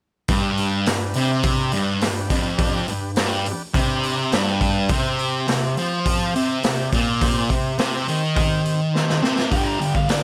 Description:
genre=garage rock duo or trio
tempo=104 BPM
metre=4/4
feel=straight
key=G major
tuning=A4 = 440 Hz
part: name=combo organ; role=sustained chords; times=0.3-10.2 s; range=C4 to D5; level=-34 LUFS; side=equal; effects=none
part: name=thick fuzz guitar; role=riff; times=0.3-10.2 s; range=F2 to G3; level=-23 LUFS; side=equal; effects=distortion
part: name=raw garage drum kit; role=drums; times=0.3-10.2 s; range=hi-hat, kick drum, snare drum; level=-25 LUFS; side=equal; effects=none
part: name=overdriven slide guitar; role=melody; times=9.5-10.2 s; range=D5 to Bb5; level=-28 LUFS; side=equal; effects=none
room=light reverb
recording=none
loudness=-21 LUFS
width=mono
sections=0.3-9.5 A section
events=drum fill 8.9-9.5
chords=0.3 G; 4.9 C5; 9.5 G

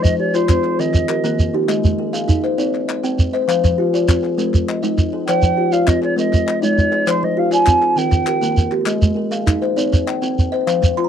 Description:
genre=southern african traditional, mbira-style interlocking cycle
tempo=134 BPM (dotted quarters)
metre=12/8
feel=straight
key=F equiheptatonic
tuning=A4 = 437 Hz
part: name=mellow wooden flute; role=melody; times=0.0-1.5, 5.3-8.7 s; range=C5 to Ab5+42c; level=-19 LUFS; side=right 3 dB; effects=none
part: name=kalimba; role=arpeggios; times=0.0-11.1 s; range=Eb3+29c to G5-29c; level=-19 LUFS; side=left 6 dB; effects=none
part: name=kalimba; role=arpeggios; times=0.0-11.1 s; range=Eb3+29c to C6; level=-22 LUFS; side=right 6 dB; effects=slapback echo
part: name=shekere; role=percussion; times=0.0-11.0 s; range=none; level=-17 LUFS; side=right 1 dB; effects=none
part: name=group handclap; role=percussion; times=0.3-11.1 s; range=none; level=-28 LUFS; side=left 7 dB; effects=none
room=little or no reverb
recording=dry, close 1970s-style studio recording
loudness=-15 LUFS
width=side -9 dB against mid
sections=0.0-11.1 A section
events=kalimba fill 10.8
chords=0.0 Fm; 0.8 Eb; 1.7 Ab; 2.6 Cm; 3.5 Fm; 4.4 Ab; 5.3 Fm; 6.2 Ab; 7.1 Fm; 8.0 Eb; 8.9 Ab; 9.8 Cm

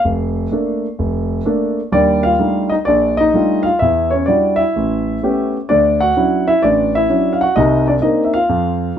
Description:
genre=solo jazz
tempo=128 BPM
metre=4/4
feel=swing 68% on 8ths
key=unclear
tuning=A4 = 440 Hz
part: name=dark concert grand piano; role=solo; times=0.0-9.0 s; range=F1 to F#5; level=-13 LUFS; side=equal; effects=none
room=moderate studio reverb, RT60 0.8 s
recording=minimal, uncompressed stereo recording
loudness=-13 LUFS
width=side -9 dB against mid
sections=0.0-1.9 A section; 1.9-9.0 B section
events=grand piano solo 0.0-1.9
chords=0.0 Bbmaj7; 1.9 Ebmaj9#11; 3.8 Em9; 4.8 A9; 5.7 Dmaj9; 7.6 Cm9

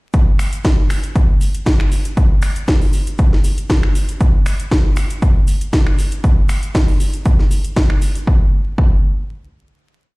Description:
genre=house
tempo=118 BPM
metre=4/4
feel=swing 53% on 16ths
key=none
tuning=none
part: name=electronic kick drum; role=drums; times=0.1-8.9 s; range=none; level=-13 LUFS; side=equal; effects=overdrive
part: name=house drum kit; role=drums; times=0.1-8.2 s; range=finger snaps, hi-hat, snare drum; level=-23 LUFS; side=equal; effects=overdrive
part: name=cabasa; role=percussion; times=0.1-8.3 s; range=none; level=-36 LUFS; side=left 3 dB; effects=none
room=digital ambience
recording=played on a big sound system in a bare room, large studio reverb, vinyl crackle, lossy compression artefacts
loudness=-13 LUFS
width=side -25 dB against mid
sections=0.1-8.3 drop; 8.3-10.2 final hit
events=drop 0.1-8.3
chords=none

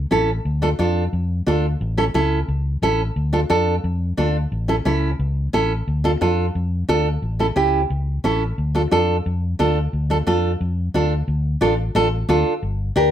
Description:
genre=latin, cumbia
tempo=177 BPM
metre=4/4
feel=straight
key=D harmonic minor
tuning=A4 = 444 Hz
part: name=fingered electric bass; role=bass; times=0.0-13.1 s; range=G1 to F2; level=-21 LUFS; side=left 1 dB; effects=none
part: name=nylon-string guitar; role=accompaniment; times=0.1-13.1 s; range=C#4 to Bb4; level=-19 LUFS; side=right 1 dB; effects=none
room=moderate studio reverb, RT60 0.7 s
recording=none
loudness=-18 LUFS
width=side -10 dB against mid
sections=0.0-11.3 A section; 11.3-13.1 B section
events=none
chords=0.5 Dm; 1.8 A; 3.2 Dm; 4.5 A; 5.9 Dm; 7.2 A7; 8.6 Dm

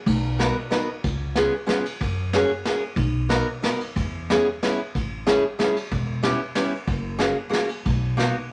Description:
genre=musette waltz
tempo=185 BPM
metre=3/4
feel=straight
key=B major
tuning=A4 = 440 Hz
part: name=upright bass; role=bass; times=0.1-8.3 s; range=E1 to F#2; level=-28 LUFS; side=equal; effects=none
part: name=vintage brush drum kit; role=drums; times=0.1-8.3 s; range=crash cymbal, kick drum, ride cymbal, snare drum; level=-30 LUFS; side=equal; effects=none
part: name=fingerpicked steel-string acoustic guitar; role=accompaniment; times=0.4-8.4 s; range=A3 to A#4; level=-25 LUFS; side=equal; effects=none
room=moderate studio reverb, RT60 0.7 s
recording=none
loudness=-24 LUFS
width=mono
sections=0.1-8.5 A section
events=none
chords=0.1 Bmaj7; 1.0 C#7; 2.0 F#add9; 3.0 Bmaj7; 4.0 E6; 4.9 Amaj7; 5.9 Em6; 6.9 F#add9; 7.9 Bmaj7

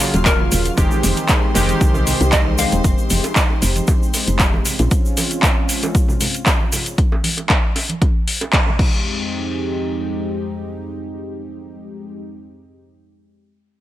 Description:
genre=deep house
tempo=116 BPM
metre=4/4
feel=swing 53% on 16ths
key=F minor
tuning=A4 = 441 Hz
part: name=warm analog pad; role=sustained chords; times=0.0-12.2 s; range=F2 to G4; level=-26 LUFS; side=equal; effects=chorus, vintage 12-bit sampler grit, sidechain pumping
part: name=warm analog keys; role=stabs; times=0.0-2.8 s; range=Db3 to G4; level=-22 LUFS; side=right 1 dB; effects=chorus, digital delay
part: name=deep house drum kit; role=drums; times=0.0-8.9 s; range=crash cymbal, handclaps, hi-hat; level=-20 LUFS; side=equal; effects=overdrive
part: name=egg shaker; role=percussion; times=0.0-7.0 s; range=none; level=-27 LUFS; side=right 2 dB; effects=none
part: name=clear studio violin section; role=texture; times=0.0-4.9 s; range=C5 to F6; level=-31 LUFS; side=left 2 dB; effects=sidechain pumping
part: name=woody FM bass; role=bass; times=0.1-4.9 s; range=Eb1 to C2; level=-19 LUFS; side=equal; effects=sidechain pumping
part: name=bongos and congas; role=percussion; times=0.1-8.9 s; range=none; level=-28 LUFS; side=right 3 dB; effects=none
part: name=hollow square pluck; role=melody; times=0.3-2.8 s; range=Bb4 to F5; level=-24 LUFS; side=left 2 dB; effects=chorus, tape echo
part: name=electronic kick drum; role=drums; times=0.3-8.9 s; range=none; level=-17 LUFS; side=equal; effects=overdrive
room=little or no reverb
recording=none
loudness=-15 LUFS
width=side -14 dB against mid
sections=0.0-9.1 A section; 9.1-13.2 B section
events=drop 0.0-9.1; band accent 8.5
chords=0.0 Ebm9; 0.8 Fm9; 4.7 Bbm9 (rootless); 7.0 N.C.; 8.8 Fm9

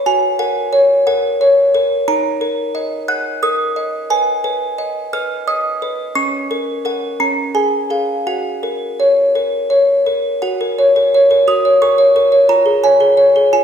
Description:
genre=classical, lullaby for music box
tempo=58 BPM (dotted quarters)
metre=6/8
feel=straight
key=F# major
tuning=A4 = 440 Hz
part: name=music box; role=solo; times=0.0-13.6 s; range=C#4 to F#6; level=-12 LUFS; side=equal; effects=none
room=wet recital hall reverb, RT60 1.5 s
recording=recorded in a church or concert hall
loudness=-12 LUFS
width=side -8 dB against mid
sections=0.0-10.4 A section; 10.4-13.6 A section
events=none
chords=0.1 F#; 2.1 D#m; 4.1 G#m/B; 6.2 F#/C#; 7.2 C#; 8.3 F#; 12.5 C#/E#

